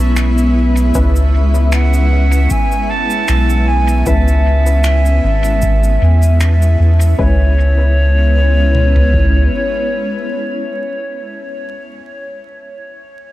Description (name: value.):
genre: ambient dub.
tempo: 77 BPM.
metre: 4/4.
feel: swing 55% on 16ths.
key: C# minor.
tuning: A4 = 439 Hz.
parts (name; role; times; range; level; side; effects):
granular cloud pad; sustained chords; 0.0-11.1 s; G#3 to B4; -20 LUFS; equal; built-in reverb.
soft dub sub bass; bass; 0.0-9.5 s; G#1 to E2; -11 LUFS; equal; none.
bubbling stepped-filter texture; texture; 0.0-7.2 s; E5; -28 LUFS; left 2 dB; chorus, built-in reverb.
electronic finger snaps and cabasa; drums; 0.2-7.2 s; none; -27 LUFS; equal; overdrive, dub echo.
filtered dub chord stab; stabs; 0.9-10.9 s; G#3 to B4; -26 LUFS; left 2 dB; chorus, dub echo.
booming analog drum machine; drums; 0.9-9.3 s; kick drum, toms; -19 LUFS; equal; none.
silver concert flute; melody; 1.7-10.9 s; C#5 to A5; -20 LUFS; equal; dub echo.
room: light reverb.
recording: vinyl crackle.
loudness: -10 LUFS.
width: side -16 dB against mid.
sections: 0.0-7.2 A section; 7.2-10.3 B section.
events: none.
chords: 0.0 C#m7.